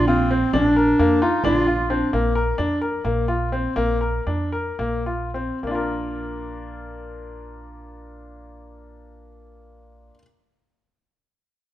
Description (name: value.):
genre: contemporary instrumental, chamber music in an uneven meter.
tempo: 204-265 BPM (eighths).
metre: 7/8.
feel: straight.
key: Bb major.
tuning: A4 = 440 Hz.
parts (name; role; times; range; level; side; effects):
warm clarinet; second line; 0.0-2.1 s; C4 to F4; -20 LUFS; equal; none.
bright baby grand piano; arpeggios; 0.0-10.2 s; Bb3 to Bb4; -23 LUFS; left 2 dB; none.
upright bass; bass; 0.0-10.1 s; Bb1 to F2; -27 LUFS; right 2 dB; none.
frame drum; percussion; 0.5-1.6 s; none; -30 LUFS; right 5 dB; none.
room: light reverb.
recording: none.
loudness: -19 LUFS.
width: side -13 dB against mid.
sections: 0.0-2.1 A section; 2.1-5.6 B section; 5.6-9.7 C section.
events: slowing down 2.1-5.6.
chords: 0.0 Bbadd9; 2.1 Bbsus2; 5.6 Bb.